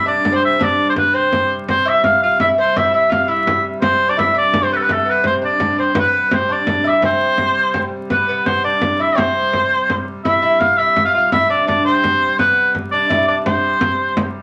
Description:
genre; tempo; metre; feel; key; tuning
medieval dance; 112 BPM (dotted quarters); 6/8; straight; C major; A4 = 440 Hz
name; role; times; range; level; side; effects
clear shawm; melody; 0.0-14.3 s; A4 to F5; -18 LUFS; equal; none
lute; second line; 0.0-14.3 s; A3 to F4; -23 LUFS; equal; none
dark hurdy-gurdy; drone; 0.0-14.4 s; C3 to G3; -31 LUFS; equal; none
frame drum; percussion; 0.2-14.3 s; none; -25 LUFS; equal; none
room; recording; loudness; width
wet studio reverb, RT60 0.5 s; vinyl crackle; -16 LUFS; mono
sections
0.0-6.0 A section; 6.0-14.4 B section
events
none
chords
none

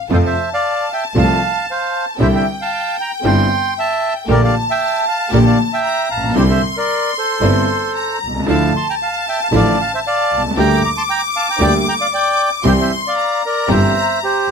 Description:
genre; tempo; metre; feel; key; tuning
tango; 115 BPM; 4/4; rubato; F major; A4 = 441 Hz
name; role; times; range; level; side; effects
clear studio violin section; second line; 0.0-14.5 s; G5 to D6; -21 LUFS; left 2 dB; none
bandoneon; melody; 0.1-14.5 s; G4 to D6; -18 LUFS; right 1 dB; none
clear concert grand piano; accompaniment; 0.1-13.9 s; G1 to G4; -17 LUFS; equal; none
muted studio string section; stabs; 0.1-13.9 s; F3 to G4; -25 LUFS; equal; none
clear double bass; bass; 0.1-14.5 s; G1 to F2; -18 LUFS; right 1 dB; none
room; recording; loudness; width
light reverb; close, detailed microphones; -14 LUFS; side -6 dB against mid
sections
0.1-14.5 A section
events
none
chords
0.1 F; 2.2 Cadd9; 4.3 Gmadd9/Bb; 6.4 Cadd9; 8.5 Dmadd9; 10.6 Gm/D; 12.7 C

